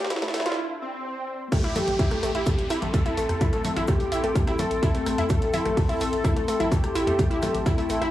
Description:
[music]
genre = melodic techno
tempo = 127 BPM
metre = 4/4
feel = straight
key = A minor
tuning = A4 = 440 Hz
[part]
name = wide unison lead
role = melody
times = 0.0-8.1 s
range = C4 to A4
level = -30 LUFS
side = left 1 dB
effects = ensemble chorus, sidechain pumping, tape echo
[part]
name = dark analog pad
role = sustained chords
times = 0.0-8.1 s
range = A4 to C6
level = -34 LUFS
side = equal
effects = chorus, sidechain pumping
[part]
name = round analog bass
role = bass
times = 0.0-8.1 s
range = A1 to E2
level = -32 LUFS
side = equal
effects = sidechain pumping, high-pass filter
[part]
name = house drum kit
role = drums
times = 0.0-8.1 s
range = congas, crash cymbal, hi-hat, rim click, snare drum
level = -33 LUFS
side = left 1 dB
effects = high-pass filter on snare, high-pass filter on hats, high-pass filter on perc, high-pass filter on cymbals, high-pass filter on room
[part]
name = warbly tape-like pad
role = texture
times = 0.0-8.1 s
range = C4 to A5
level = -34 LUFS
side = left 2 dB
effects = chorus, built-in reverb, phaser, sidechain pumping
[part]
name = wide unison pluck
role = arpeggios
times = 0.1-8.1 s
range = A3 to E5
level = -29 LUFS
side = equal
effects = sidechain pumping, analog delay
[part]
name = electronic kick drum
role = drums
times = 0.1-7.8 s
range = none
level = -23 LUFS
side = equal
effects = high-pass filter on kick, high-pass filter on room
[part]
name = open jazz drum kit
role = drums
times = 1.5-8.0 s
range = hi-hat, shaker, snare drum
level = -44 LUFS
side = left 1 dB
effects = none
[part]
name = downlifter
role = sound effects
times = 1.5-5.3 s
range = none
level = -38 LUFS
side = equal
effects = none
[sound]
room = light reverb, digital ambience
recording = dry, gritty hardware recording, high-pass filter, studio ambience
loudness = -22 LUFS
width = side -13 dB against mid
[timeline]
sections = 0.0-1.5 A section; 1.5-8.1 B section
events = build-up 0.0-1.5; drum fill 0.0-0.6; filter sweep 0.0-1.5; break 0.6-1.5; drop 1.5-8.1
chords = 0.0 D7(no3); 1.5 Am7

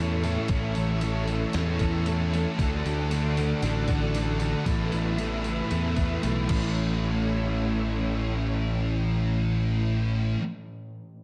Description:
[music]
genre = rock, shoegaze and dream pop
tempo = 115 BPM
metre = 4/4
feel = straight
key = A major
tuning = A4 = 443 Hz
[part]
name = string machine, cellos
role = sustained chords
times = 0.0-10.4 s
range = A3 to D6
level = -37 LUFS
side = equal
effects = ensemble chorus
[part]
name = overdriven electric guitar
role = riff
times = 0.0-10.4 s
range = A2 to A4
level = -33 LUFS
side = equal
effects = reverse reverb
[part]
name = thick fuzz guitar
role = riff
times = 0.0-10.4 s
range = A2 to D4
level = -32 LUFS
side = equal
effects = distortion, ensemble chorus
[part]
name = modern bright picked electric bass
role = bass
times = 0.0-10.3 s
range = A1 to E2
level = -31 LUFS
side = equal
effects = none
[part]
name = clean 12-bit digital drum machine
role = drums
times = 0.2-6.6 s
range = crash cymbal, hi-hat, kick drum, snare drum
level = -34 LUFS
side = equal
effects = none
[sound]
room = moderate plate reverb, RT60 1.4 s, digital ambience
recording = dreamy mix soaked in reverb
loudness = -27 LUFS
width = mono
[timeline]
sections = 0.0-6.8 A section; 6.8-10.9 B section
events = none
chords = 0.0 A; 2.6 D; 4.7 Asus2; 6.5 A

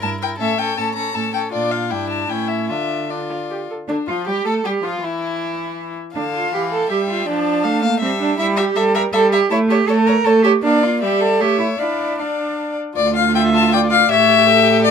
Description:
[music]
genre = quick classical-period movement for string quartet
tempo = 159 BPM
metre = 3/4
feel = straight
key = D minor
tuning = A4 = 444 Hz
[part]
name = warm violin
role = melody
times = 0.0-14.9 s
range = D4 to Bb5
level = -20 LUFS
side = left 7 dB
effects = none
[part]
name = rich violin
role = second line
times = 0.0-14.9 s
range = D4 to F5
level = -24 LUFS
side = left 4 dB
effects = none
[part]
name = rich viola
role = accompaniment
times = 0.0-14.9 s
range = D3 to E5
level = -22 LUFS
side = right 2 dB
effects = none
[part]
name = rich cello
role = bass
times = 0.0-14.9 s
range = D2 to Bb4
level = -19 LUFS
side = right 4 dB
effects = none
[sound]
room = little or no reverb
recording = close, detailed microphones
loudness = -15 LUFS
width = side -7 dB against mid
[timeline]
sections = 0.0-3.9 A section; 3.9-13.0 B section; 13.0-14.9 B section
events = none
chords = 0.4 A; 1.5 Bb; 1.9 A7sus4/G; 2.3 A7; 2.7 Dm; 3.9 Dm (rootless); 5.0 N.C.; 6.2 Dm; 7.3 Dm/F; 8.4 Edim/G; 9.5 A; 10.6 Bb; 11.0 A7sus4/G; 11.4 A7; 11.8 Dm; 14.1 A7

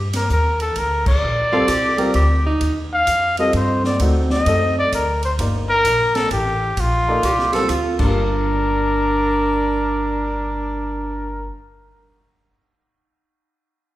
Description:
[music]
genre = jazz, small-group swing and bop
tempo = 130 BPM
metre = 3/4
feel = swing 65% on 8ths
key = G minor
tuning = A4 = 439 Hz
[part]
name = upright bass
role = bass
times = 0.0-11.5 s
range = G1 to G2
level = -22 LUFS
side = equal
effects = none
[part]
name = open jazz drum kit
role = drums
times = 0.1-8.1 s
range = crash cymbal, hi-hat, kick drum, ride cymbal, snare drum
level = -26 LUFS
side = equal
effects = none
[part]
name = mellow trumpet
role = melody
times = 0.2-11.5 s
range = F4 to F5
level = -20 LUFS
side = left 1 dB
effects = none
[part]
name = clear tenor saxophone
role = second line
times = 1.5-2.7, 7.2-11.5 s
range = D4 to Bb4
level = -23 LUFS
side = right 2 dB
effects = none
[part]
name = warm upright piano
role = accompaniment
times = 1.5-11.6 s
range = G2 to D5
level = -24 LUFS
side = equal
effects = none
[sound]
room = wet recital hall reverb, RT60 1.4 s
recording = recorded in a church or concert hall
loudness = -16 LUFS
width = side -15 dB against mid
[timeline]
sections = 0.0-8.2 A section; 8.2-10.9 B section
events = band accent 1.0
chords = 0.0 Gm7; 2.6 Eb; 4.0 D7b9; 5.4 Gm7

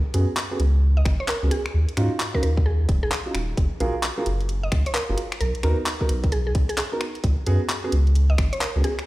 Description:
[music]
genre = UK garage, two-step garage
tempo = 131 BPM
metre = 4/4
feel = swing 63% on 16ths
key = unclear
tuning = A4 = 440 Hz
[part]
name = soft dub sub bass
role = bass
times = 0.0-8.8 s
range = D#1 to G#2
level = -21 LUFS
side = equal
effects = sidechain pumping
[part]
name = dark concert grand piano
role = stabs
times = 0.1-8.8 s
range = A#3 to A#4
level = -29 LUFS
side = right 2 dB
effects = low-pass filter, tape echo
[part]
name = garage drum kit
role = drums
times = 0.1-9.1 s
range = finger snaps, handclaps, hi-hat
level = -29 LUFS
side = equal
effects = overdrive, studio reverb
[part]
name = mallet-like synth pluck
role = melody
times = 1.0-9.0 s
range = G#4 to D#5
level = -31 LUFS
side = equal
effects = chorus, cassette tape
[part]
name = electronic kick drum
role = drums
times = 1.1-8.5 s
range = none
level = -22 LUFS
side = equal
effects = studio reverb
[sound]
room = little or no reverb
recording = played on a big sound system in a bare room, stone room reverb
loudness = -20 LUFS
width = side -18 dB against mid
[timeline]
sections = 0.0-9.1 A section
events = filter sweep on grand piano 0.0-9.1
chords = 0.0 C#7sus4; 1.7 D#m9; 3.6 F#maj9; 5.4 Bmaj7; 7.2 C#7sus4

